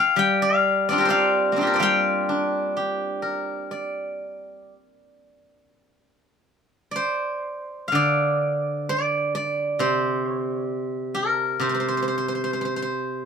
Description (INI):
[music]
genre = chinese traditional, Chinese solo plucked strings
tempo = 57-68 BPM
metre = 4/4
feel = rubato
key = G yu mode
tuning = A4 = 439 Hz
[part]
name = steel-string zither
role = solo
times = 0.0-13.3 s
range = C3 to G5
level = -21 LUFS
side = equal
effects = none
[sound]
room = moderate studio reverb, RT60 0.6 s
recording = band playing live in one room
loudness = -21 LUFS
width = side -6 dB against mid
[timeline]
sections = 0.0-6.0 A section; 6.0-13.3 B section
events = none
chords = none